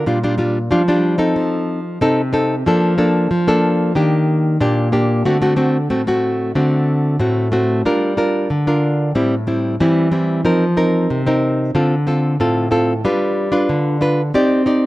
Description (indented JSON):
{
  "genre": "samba",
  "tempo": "92 BPM",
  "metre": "4/4",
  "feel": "straight",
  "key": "G minor",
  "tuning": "A4 = 440 Hz",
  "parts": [
    { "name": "nylon-string guitar", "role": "solo", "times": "0.0-14.9 s", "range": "A2 to D5", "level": "-14 LUFS", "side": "equal", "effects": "none" }
  ],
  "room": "light reverb, small room ambience",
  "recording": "dry, close 1970s-style studio recording",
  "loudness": "-14 LUFS",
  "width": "side -18 dB against mid",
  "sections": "0.0-7.9 A section; 7.9-14.9 B section",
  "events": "none",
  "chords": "0.1 Bb6; 1.4 F7; 2.7 Bbmaj7/F; 4.0 Ebmaj7; 5.3 D7; 7.9 Gm7; 9.2 Am7; 10.4 F7sus4; 11.7 Dm7; 13.0 G7; 14.3 Cmadd9"
}